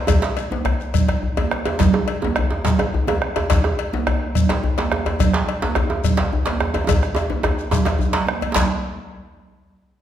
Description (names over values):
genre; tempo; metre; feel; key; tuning
west african traditional, West African drum ensemble; 142 BPM (dotted quarters); 12/8; straight; none; none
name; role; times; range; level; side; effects
bombo; percussion; 0.1-8.7 s; none; -23 LUFS; equal; none
congas; percussion; 0.1-8.7 s; none; -25 LUFS; right 6 dB; none
cowbell; percussion; 0.1-8.7 s; none; -28 LUFS; left 6 dB; none
djembe; percussion; 0.1-8.7 s; none; -24 LUFS; left 2 dB; none
djembe; percussion; 0.1-8.7 s; none; -24 LUFS; right 3 dB; none
shekere; percussion; 0.1-8.7 s; none; -30 LUFS; left 4 dB; none
room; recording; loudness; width
wet recital hall reverb, RT60 1.5 s; recorded in a church or concert hall; -18 LUFS; side -10 dB against mid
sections
0.0-8.6 A section; 8.6-10.0 B section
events
speeding up 0.0-10.0; drum fill 1.1-1.8, 6.9-8.6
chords
none